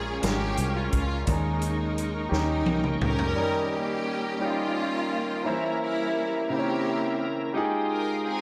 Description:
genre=slow gospel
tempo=57 BPM (dotted quarters)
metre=6/8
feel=straight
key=unclear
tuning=A4 = 440 Hz
part: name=rich studio string section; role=melody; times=0.0-8.4 s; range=G3 to Bb4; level=-33 LUFS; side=equal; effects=none
part: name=clear baby grand piano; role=accompaniment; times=0.0-8.4 s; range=Bb2 to Db5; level=-32 LUFS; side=equal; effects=none
part: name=bright tonewheel organ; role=sustained chords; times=0.0-8.4 s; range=Ab3 to Eb6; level=-36 LUFS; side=equal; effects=fast rotary speaker, overdrive, chorus vibrato
part: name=fingered electric bass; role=bass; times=0.0-3.3 s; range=Ab1 to Eb2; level=-31 LUFS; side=equal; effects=none
part: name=swinging big-band drum kit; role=drums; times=0.2-3.4 s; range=hi-hat, kick drum, snare drum, toms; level=-32 LUFS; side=equal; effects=none
room=moderate concert hall reverb, RT60 2.3 s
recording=none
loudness=-27 LUFS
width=mono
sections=0.0-3.4 A section; 3.4-8.4 B section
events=drum fill 2.3-3.4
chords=0.0 Bbm7; 1.3 Eb7sus4; 2.3 Eb7; 5.5 C7b9/E; 7.5 Fm9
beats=0.23 | 1.27 2.32 | 3.36 4.41 | 5.45 6.50 | 7.54

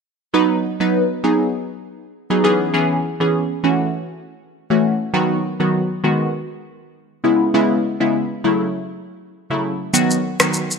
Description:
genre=afrobeats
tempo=100 BPM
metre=4/4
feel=swing 55% on 16ths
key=C# minor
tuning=A4 = 439 Hz
part: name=glassy digital keys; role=accompaniment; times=0.3-10.6 s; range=C#3 to B4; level=-17 LUFS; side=equal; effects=chorus, phaser
part: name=electronic shaker, finger snaps and rim click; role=drums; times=9.9-10.8 s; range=none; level=-16 LUFS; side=left 1 dB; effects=none
room=moderate lush hall reverb, RT60 1.9 s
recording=none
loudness=-16 LUFS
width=side -5 dB against mid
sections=0.3-10.8 A section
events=none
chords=0.3 B; 1.2 G#m7; 2.4 C#m7; 3.6 F#m7; 5.1 B; 6.0 G#m7; 7.2 C#m7; 8.4 F#m7; 9.9 B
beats=| 0.34 0.94 1.54 2.14 | 2.74 3.34 3.94 4.54 | 5.14 5.74 6.34 6.94 | 7.54 8.14 8.74 9.34 | 9.94 10.54

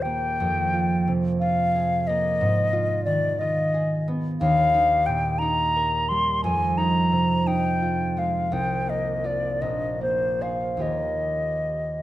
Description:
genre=classical, impressionist duo for flute and harp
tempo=48-62 BPM (dotted quarters)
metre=6/8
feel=rubato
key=Eb major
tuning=A4 = 440 Hz
part: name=hollow concert flute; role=melody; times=0.0-12.0 s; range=C5 to C6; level=-23 LUFS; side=left 1 dB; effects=none
part: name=concert harp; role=accompaniment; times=0.0-12.0 s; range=Bb1 to D5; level=-25 LUFS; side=right 1 dB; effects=none
room=moderate recital hall reverb, RT60 1.4 s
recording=close, detailed microphones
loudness=-21 LUFS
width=side -14 dB against mid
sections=0.0-12.0 A section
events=none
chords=0.4 Fmadd9; 2.4 Abm6; 4.4 Eb; 6.4 Fm7; 8.5 Cm11; 9.6 Bb9sus4; 10.8 Ebadd9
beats=| 0.39 1.41 | 2.40 3.39 | 4.41 5.42 | 6.44 7.47 | 8.53 9.61 | 10.82

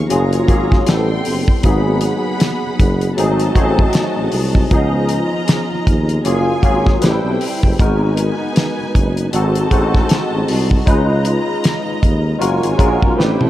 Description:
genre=lush 1970s-style soul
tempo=78 BPM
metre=4/4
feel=swing 58% on 16ths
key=G# dorian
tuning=A4 = 440 Hz
part: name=dark studio string section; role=second line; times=0.0-13.5 s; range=D#4 to C6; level=-24 LUFS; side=right 2 dB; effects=none
part: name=barky tine electric piano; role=accompaniment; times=0.0-13.5 s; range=E#3 to B4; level=-19 LUFS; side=left 2 dB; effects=overdrive, ensemble chorus
part: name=breathy tuba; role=bass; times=0.0-13.5 s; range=F#1 to D#2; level=-18 LUFS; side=equal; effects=none
part: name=damped 70s drum kit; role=drums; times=0.1-13.5 s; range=hi-hat, kick drum, snare drum, toms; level=-15 LUFS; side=equal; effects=none
part: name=electric guitar through a small old amp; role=riff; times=12.8-13.5 s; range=C4 to B4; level=-22 LUFS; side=right 8 dB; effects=none
room=light reverb, small room ambience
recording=dark, warm production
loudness=-13 LUFS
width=side -14 dB against mid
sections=0.0-13.5 A section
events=drum fill 13.2-13.5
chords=0.1 F#maj9; 0.9 Am7; 1.6 G#m7; 3.2 G#7b9; 4.7 C#9; 6.3 F#maj9; 7.0 Am7; 7.8 G#m7; 9.3 G#7b9; 10.9 C#9; 12.4 F#maj9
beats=0.10 0.87 | 1.64 2.41 3.18 3.95 | 4.72 5.49 6.26 7.03 | 7.80 8.56 9.34 10.10 | 10.87 11.64 12.41 13.18

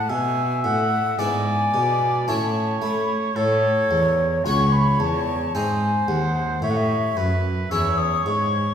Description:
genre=classical, baroque-style sonata movement with continuo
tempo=55 BPM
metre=3/4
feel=straight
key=E major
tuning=A4 = 440 Hz
part: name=bright baroque flute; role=melody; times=0.0-8.7 s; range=C#5 to E6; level=-23 LUFS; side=left 2 dB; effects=none
part: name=clear oboe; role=second line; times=0.0-8.7 s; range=A4 to F#5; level=-27 LUFS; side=right 5 dB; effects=none
part: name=harpsichord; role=accompaniment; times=0.0-8.7 s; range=C#2 to D#5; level=-27 LUFS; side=left 1 dB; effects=none
part: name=rich cello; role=bass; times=0.0-8.7 s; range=C#2 to A3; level=-25 LUFS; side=right 1 dB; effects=none
room=wet recital hall reverb, RT60 1.4 s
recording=heard from further back in the room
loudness=-19 LUFS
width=side -8 dB against mid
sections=0.0-8.7 A section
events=none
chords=0.1 E7; 2.3 A; 3.4 F#m; 5.5 G#; 6.6 A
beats=| 0.10 1.19 2.28 | 3.37 4.46 5.55 | 6.63 7.71

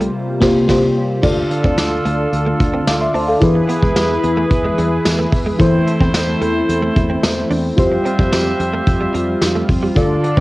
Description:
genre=1980s-style pop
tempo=110 BPM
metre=4/4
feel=straight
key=D minor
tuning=A4 = 440 Hz
part: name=FM electric piano with soft pad layer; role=accompaniment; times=0.0-10.4 s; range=C3 to D6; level=-18 LUFS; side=left 1 dB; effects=chorus, cassette tape
part: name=brassy analog pad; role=sustained chords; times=0.0-10.4 s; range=C3 to B4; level=-22 LUFS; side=equal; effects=chorus, cassette tape
part: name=direct-recorded clean electric guitar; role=riff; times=0.0-10.4 s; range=F3 to D4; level=-25 LUFS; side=right 2 dB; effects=ensemble chorus, cassette tape, analog delay
part: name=fingered electric bass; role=bass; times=0.0-10.4 s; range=C2 to F2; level=-22 LUFS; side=equal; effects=none
part: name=vintage brush drum kit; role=drums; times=0.0-10.4 s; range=crash cymbal, hi-hat, kick drum, snare drum, tambourine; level=-18 LUFS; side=equal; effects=cassette tape
part: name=clear horn section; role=stabs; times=1.2-10.4 s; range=D4 to E5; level=-24 LUFS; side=right 1 dB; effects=cassette tape, analog delay
room=moderate spring reverb, RT60 1.5 s, small room ambience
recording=home recording on cassette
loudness=-13 LUFS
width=side -19 dB against mid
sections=0.0-1.2 A section; 1.2-10.4 B section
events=band accent 0.1-1.2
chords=0.0 C7sus4; 1.2 Dm; 3.4 E; 5.6 Am/E; 7.8 Fsus2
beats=0.14 0.69 | 1.24 1.78 2.33 2.87 | 3.42 3.96 4.51 5.05 | 5.60 6.14 6.69 7.24 | 7.78 8.33 8.87 9.42 | 9.96

